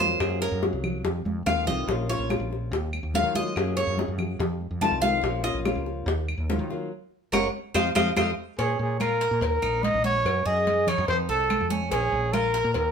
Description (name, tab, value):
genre	latin, Cuban son and guajira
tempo	143 BPM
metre	4/4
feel	straight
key	Bb minor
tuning	A4 = 438 Hz
part	flamenco guitar	accompaniment	0.0-8.3 s	Eb3 to Ab4	-32 LUFS	left 3 dB	none
part	Cuban tres	arpeggios	0.0-12.9 s	Db4 to A5	-28 LUFS	right 1 dB	none
part	woody fretless electric bass	bass	0.0-12.9 s	Gb1 to Eb3	-30 LUFS	equal	none
part	bongos and cowbell	percussion	0.0-12.9 s	none	-31 LUFS	left 3 dB	none
part	congas	percussion	0.0-12.9 s	none	-32 LUFS	right 2 dB	none
part	claves	percussion	0.2-12.5 s	none	-35 LUFS	equal	none
part	breathy trumpet	melody	8.6-12.9 s	Ab4 to Eb5	-24 LUFS	equal	none
room	wet studio reverb, RT60 0.7 s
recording	band playing live in one room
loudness	-23 LUFS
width	side -6 dB against mid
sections	0.0-8.6 A section; 8.6-12.9 B section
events	Cuban tres solo 0.0-8.6; drum fill 1.3-1.9, 8.0-8.6; band accent 6.9-8.6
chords	0.2 Gbadd9; 1.0 F7; 1.9 Bbm; 2.7 Ebmadd9; 3.6 Gbadd9; 4.4 F7; 5.2 Bbm; 6.1 Ebmadd9; 6.9 Gbadd9; 7.7 F7; 8.6 Bbm; 9.4 Ebm; 10.3 Gbsus2; 11.1 F7; 11.9 Bbm